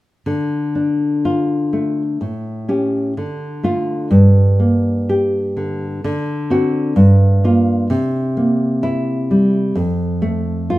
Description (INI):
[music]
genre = romantic piece for solo classical guitar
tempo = 63 BPM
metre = 2/4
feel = rubato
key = D minor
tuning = A4 = 443 Hz
[part]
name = nylon-string guitar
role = solo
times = 0.3-10.8 s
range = F2 to G4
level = -14 LUFS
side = equal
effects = none
[sound]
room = moderate large studio reverb, RT60 0.9 s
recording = band playing live in one room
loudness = -14 LUFS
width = side -17 dB against mid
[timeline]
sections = 0.3-10.8 A section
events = none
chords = 0.3 Dm; 2.2 A7; 3.2 Dm; 4.1 Gm; 6.0 D7; 7.0 Gm7; 7.9 C7; 9.8 F